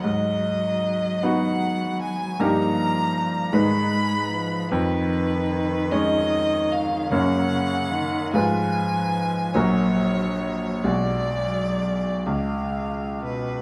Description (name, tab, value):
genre	classical, slow romantic movement for piano trio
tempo	41-54 BPM (dotted quarters)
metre	6/8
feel	rubato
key	F# major from 4.7 s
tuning	A4 = 440 Hz
part	clear violin	melody	0.0-13.6 s	B4 to Cb6	-29 LUFS	equal	none
part	rich cello	second line	0.0-13.6 s	B2 to G#3	-30 LUFS	equal	none
part	bright concert grand piano	accompaniment	0.0-13.6 s	A#1 to C#5	-26 LUFS	equal	none
room	wet recital hall reverb, RT60 1.7 s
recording	none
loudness	-23 LUFS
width	mono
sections	0.0-13.6 A section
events	none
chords	0.0 Abm7; 2.4 Eb/G; 3.5 Abm; 4.7 C#7/E#; 7.1 F#; 8.3 Fdim/Ab; 9.5 F#/A#; 10.8 G#m7b5/B; 12.3 C#